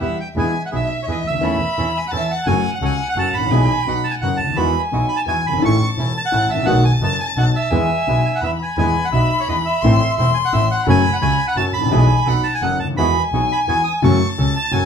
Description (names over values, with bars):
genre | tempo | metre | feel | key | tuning
tango | 171 BPM | 3/4 | rubato | E major | A4 = 441 Hz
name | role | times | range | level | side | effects
bandoneon | melody | 0.0-14.9 s | C#5 to D#6 | -21 LUFS | right 3 dB | none
warm violin | second line | 0.0-14.9 s | E5 to C6 | -24 LUFS | left 4 dB | none
warm concert grand piano | accompaniment | 0.0-14.9 s | E1 to A4 | -20 LUFS | left 2 dB | none
bandoneon | stabs | 0.0-14.9 s | G#3 to A4 | -29 LUFS | right 2 dB | none
dark double bass | bass | 0.0-14.9 s | E1 to E2 | -21 LUFS | right 1 dB | none
room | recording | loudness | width
wet studio ambience, RT60 0.5 s | band playing live in one room | -15 LUFS | side -7 dB against mid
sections
0.4-8.8 A section; 8.8-14.9 A section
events
none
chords
0.4 E; 1.4 A/E; 2.5 F#m; 3.5 E/B; 3.9 B; 4.6 Eadd9; 5.6 A; 6.7 B7; 7.7 E; 9.8 Am; 10.9 F#m; 11.9 E/B; 12.3 B7; 13.0 Eadd9; 14.0 F#m